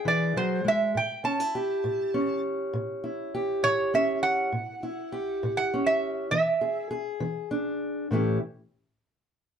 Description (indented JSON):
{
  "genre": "acoustic country blues, solo or duo",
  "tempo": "67 BPM (dotted quarters)",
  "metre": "12/8",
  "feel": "straight",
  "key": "A mixolydian",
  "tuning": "A4 = 441 Hz",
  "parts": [
    { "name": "metal-body resonator slide guitar", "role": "melody", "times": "0.0-6.9 s", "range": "C5 to A5", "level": "-25 LUFS", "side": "right 3 dB", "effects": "plate reverb" },
    { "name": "fingerpicked steel-string acoustic guitar", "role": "accompaniment", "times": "0.0-8.4 s", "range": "A2 to G#4", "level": "-28 LUFS", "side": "left 1 dB", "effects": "none" }
  ],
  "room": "wet small room reverb, RT60 0.5 s",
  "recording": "dark, warm production",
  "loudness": "-25 LUFS",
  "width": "side -8 dB against mid",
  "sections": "0.0-8.1 A section; 8.1-9.6 B section",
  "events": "resonator guitar played with a steel bar solo 0.0-8.1",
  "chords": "0.0 E7; 1.0 A7; 6.3 E7; 8.1 A7",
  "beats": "0.06 | 0.95 1.85 2.74 3.63 | 4.53 5.42 6.31 7.20 | 8.09"
}